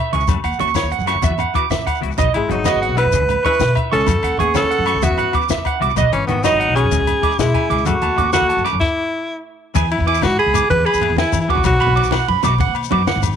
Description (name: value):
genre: highlife guitar band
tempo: 127 BPM (dotted quarters)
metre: 12/8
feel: straight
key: E major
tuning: A4 = 440 Hz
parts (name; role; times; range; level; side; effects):
- koto; second line; 0.0-11.2 s; D#3 to E4; -26 LUFS; left 4 dB; none
- electric guitar at the edge of break-up; arpeggios; 0.0-13.2 s; C#5 to D6; -21 LUFS; right 11 dB; slapback echo
- semi-hollow electric guitar; accompaniment; 0.1-13.0 s; E3 to G#4; -28 LUFS; left 14 dB; ensemble chorus
- upright bass; bass; 0.1-13.3 s; G#1 to E3; -21 LUFS; left 1 dB; none
- compact cocktail drum kit; drums; 0.1-13.3 s; crash cymbal, hi-hat, kick drum, ride cymbal, snare drum; -23 LUFS; left 4 dB; none
- shekere; percussion; 0.2-13.3 s; none; -26 LUFS; left 5 dB; none
- agogo bells; percussion; 0.3-13.4 s; none; -27 LUFS; left 12 dB; none
- congas; percussion; 0.3-13.3 s; none; -27 LUFS; right 6 dB; none
- bright alto saxophone; melody; 2.3-12.2 s; B3 to B4; -18 LUFS; equal; none
room: moderate spring reverb, RT60 1.6 s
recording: 1960s-style stereo with parts hard left and right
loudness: -14 LUFS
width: side -8 dB against mid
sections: 0.0-9.8 A section; 9.8-13.4 B section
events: stop 8.8-9.8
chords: 0.3 F#m; 1.2 Esus2; 2.2 B; 3.1 C#m; 4.1 F#m; 5.0 Esus2; 6.0 B; 6.9 C#m; 7.9 F#m; 8.8 N.C.; 9.8 E; 11.6 B